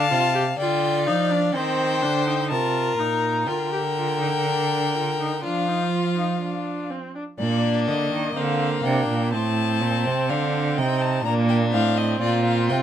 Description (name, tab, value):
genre	classical, baroque-style fugue for string quartet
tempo	62 BPM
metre	4/4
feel	straight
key	Bb major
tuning	A4 = 440 Hz
part	rich violin	melody	0.0-12.8 s	D5 to Bb5	-27 LUFS	left 7 dB	none
part	rich violin	second line	0.0-12.8 s	Bb3 to F5	-26 LUFS	left 4 dB	none
part	warm viola	accompaniment	0.0-12.8 s	Bb3 to G4	-28 LUFS	right 2 dB	none
part	rich cello	bass	0.0-12.8 s	A2 to F3	-24 LUFS	right 4 dB	none
room	moderate small room reverb, RT60 0.5 s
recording	none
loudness	-20 LUFS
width	side -10 dB against mid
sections	0.0-7.4 A section; 7.4-12.8 B section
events	none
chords	0.0 Dm; 1.5 Eb; 3.5 Bb/D; 5.4 F5; 7.4 Bb; 9.3 F7/A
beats	0.59 1.55 2.50 | 3.47 4.45 5.43 6.41 | 7.39 8.37 9.33 10.30 | 11.26 12.21